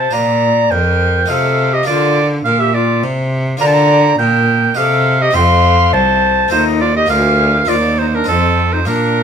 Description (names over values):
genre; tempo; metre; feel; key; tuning
classical, baroque-style sonata movement with continuo; 103 BPM; 3/4; straight; unclear; A4 = 440 Hz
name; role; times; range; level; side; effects
tenor recorder; melody; 0.0-9.2 s; C4 to G5; -17 LUFS; left 7 dB; none
clear oboe; second line; 0.0-9.2 s; A4 to C6; -14 LUFS; right 5 dB; none
harpsichord; accompaniment; 0.0-9.2 s; C2 to G4; -23 LUFS; left 1 dB; none
clear cello; bass; 0.0-9.2 s; C2 to D3; -16 LUFS; equal; none
room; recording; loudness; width
moderate large studio reverb, RT60 0.9 s; minimal, uncompressed stereo recording; -11 LUFS; side -7 dB against mid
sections
0.0-9.2 A section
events
none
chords
0.1 Bb; 1.3 F7/C; 1.9 Bb; 3.6 Bb/D; 4.8 Cm; 5.4 F; 6.5 F7/Eb; 7.1 Bb/D; 7.7 Cm7/Eb; 8.3 F7